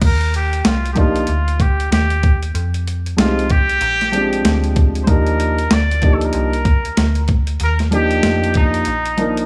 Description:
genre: hip hop, jazz-hop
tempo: 95 BPM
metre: 4/4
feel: swing 62% on 16ths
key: Eb major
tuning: A4 = 440 Hz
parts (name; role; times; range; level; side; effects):
- trumpet with straight mute; melody; 0.0-9.5 s; Eb4 to D5; -23 LUFS; equal; none
- metallic FM bass; bass; 0.0-9.5 s; Bb1 to F2; -22 LUFS; equal; none
- boom bap sampler-style drum kit; drums; 0.0-9.5 s; crash cymbal, hi-hat, kick drum, snare drum; -19 LUFS; equal; none
- dark concert grand piano; accompaniment; 0.9-9.4 s; F3 to Bb4; -21 LUFS; equal; none
room: light reverb, digital ambience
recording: small room ambience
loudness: -16 LUFS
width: mono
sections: 0.0-9.5 A section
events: none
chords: 0.0 Ebmaj9; 2.5 Fm7; 3.8 Bb13; 5.1 Ebmaj9

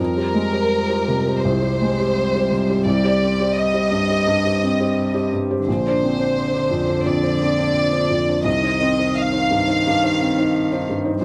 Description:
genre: neoclassical piano and strings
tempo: 85 BPM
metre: 4/4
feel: rubato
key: C minor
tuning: A4 = 440 Hz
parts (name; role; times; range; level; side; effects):
- warm chamber violin section; melody; 0.0-10.9 s; Bb4 to F5; -24 LUFS; equal; none
- clear cello; second line; 0.0-11.2 s; D3 to G3; -27 LUFS; equal; none
- felt-muted upright piano; accompaniment; 0.0-11.2 s; Bb1 to C5; -22 LUFS; equal; none
room: little or no reverb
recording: close, detailed microphones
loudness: -19 LUFS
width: mono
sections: 0.0-11.2 A section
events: none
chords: 0.0 Fmadd9 (rootless); 2.9 Cm; 5.7 Bbadd9; 8.5 Cm

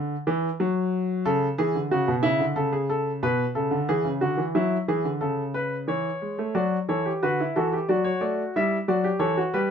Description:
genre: classical, baroque-style 3-part fugue for grand piano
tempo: 91 BPM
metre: 4/4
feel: straight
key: D major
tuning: A4 = 439 Hz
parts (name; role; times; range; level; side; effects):
- clear baby grand piano; solo; 0.0-9.7 s; B2 to E5; -22 LUFS; equal; none
room: light reverb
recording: none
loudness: -22 LUFS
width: side -7 dB against mid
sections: 0.0-6.6 A section; 6.6-9.7 B section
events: none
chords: 0.0 N.C.; 1.3 A/C#; 3.9 E7; 5.2 A/C#; 6.6 D; 7.9 D/F#

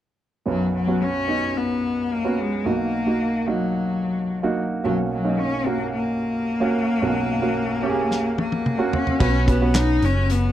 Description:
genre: piano-driven pop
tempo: 110 BPM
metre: 4/4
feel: straight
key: B major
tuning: A4 = 436 Hz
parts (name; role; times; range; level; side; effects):
- clear cello; melody; 0.5-10.5 s; F#3 to D#4; -23 LUFS; left 3 dB; none
- warm upright piano; accompaniment; 0.5-10.5 s; B1 to B4; -24 LUFS; right 4 dB; none
- loose indie drum kit; drums; 8.1-10.4 s; crash cymbal, handclaps, hi-hat, kick drum, snare drum, toms; -24 LUFS; equal; none
- hollow-body short-scale fingered electric bass; bass; 9.2-10.5 s; F#1 to B1; -20 LUFS; equal; none
room: studio reverb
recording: dry, close 1970s-style studio recording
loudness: -20 LUFS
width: side -12 dB against mid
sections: 0.5-9.2 A section; 9.2-10.5 B section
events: drum fill 8.1-9.2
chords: 0.5 Bsus2; 2.7 D#m/B; 4.8 F#/B; 9.2 Bsus2

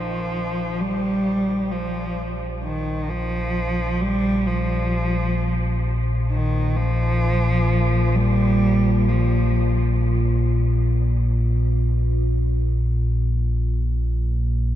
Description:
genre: ambient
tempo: free time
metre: none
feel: none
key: unclear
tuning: A4 = 439 Hz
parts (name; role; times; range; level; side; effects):
- rich cello; melody; 0.0-9.8 s; Eb3 to G3; -23 LUFS; right 1 dB; diffuse ambient delay
- deep rumbling drone; drone; 0.0-14.8 s; Bb1 to Bb2; -20 LUFS; equal; built-in reverb
room: moderate huge ambient reverb, RT60 9.2 s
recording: dark, warm production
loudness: -19 LUFS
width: side -12 dB against mid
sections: 0.0-14.8 A section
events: none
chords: none

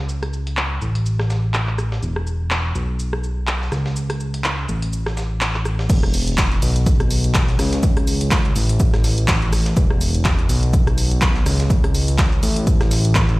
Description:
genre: piano house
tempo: 124 BPM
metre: 4/4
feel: swing 56% on 16ths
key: unclear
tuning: A4 = 440 Hz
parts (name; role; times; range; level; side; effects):
- fat analog bass; bass; 0.0-13.4 s; E1 to C#2; -20 LUFS; equal; sidechain pumping
- breakbeat sampler-style drum kit; drums; 0.1-13.3 s; hi-hat, shaker, snare drum; -33 LUFS; equal; high-pass filter on snare, low-pass filter on snare, sidechain pumping on perc, high-pass filter on perc, low-pass filter on perc, sidechain pumping on hats, high-pass filter on hats, low-pass filter on hats, high-pass filter on room, low-pass filter on room
- punchy analog drum machine; drums; 0.2-13.4 s; crash cymbal, handclaps, hi-hat, rim click; -24 LUFS; equal; low-pass filter on hats, low-pass filter on snare, low-pass filter on cymbals
- electronic kick drum; drums; 5.9-13.3 s; none; -18 LUFS; equal; none
room: little or no reverb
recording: played on a big sound system in a bare room, stone room reverb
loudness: -16 LUFS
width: side -21 dB against mid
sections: 0.0-5.9 A section; 5.9-13.4 B section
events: drop 5.9-13.4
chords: none

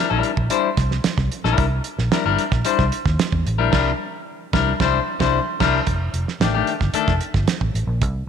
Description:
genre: funk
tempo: 112 BPM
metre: 4/4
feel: straight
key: C mixolydian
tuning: A4 = 439 Hz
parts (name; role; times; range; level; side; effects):
- clean electric guitar; accompaniment; 0.0-7.1 s; Eb3 to C5; -21 LUFS; left 8 dB; none
- vintage muted fingered electric bass; bass; 0.1-8.2 s; F1 to E2; -22 LUFS; equal; none
- damped 70s drum kit; drums; 0.2-8.1 s; crash cymbal, hi-hat, kick drum, snare drum; -23 LUFS; right 4 dB; none
room: moderate echo chamber reverb, RT60 2.1 s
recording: 1960s-style stereo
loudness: -18 LUFS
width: side -7 dB against mid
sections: 0.0-5.9 A section; 5.9-8.3 B section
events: band accent 3.7-5.9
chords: 0.0 C9; 5.9 F13

